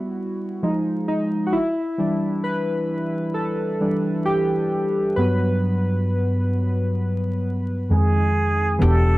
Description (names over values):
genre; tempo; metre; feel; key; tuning
lo-fi hip hop; 66 BPM; 4/4; swing 58% on 16ths; E minor; A4 = 440 Hz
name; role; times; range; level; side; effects
warbly lo-fi synth keys; accompaniment; 0.0-9.2 s; F2 to B4; -20 LUFS; equal; chorus
trumpet with plunger mute; melody; 7.9-9.2 s; Ab4 to A4; -23 LUFS; right 2 dB; none
upright bass; bass; 8.8-9.2 s; E1; -16 LUFS; equal; none
room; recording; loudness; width
moderate small room reverb, RT60 0.5 s; dark, warm production, vinyl crackle; -20 LUFS; side -18 dB against mid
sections
0.0-8.8 A section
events
synth keys solo 0.0-8.8; filter sweep on synth keys 0.0-8.8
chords
0.0 Gmaj7; 0.6 Fm7; 1.5 Em7; 5.2 Gmaj7; 7.9 Fm7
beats
0.63 | 1.54 2.45 3.35 4.26 | 5.17 6.08 6.99 7.90 | 8.81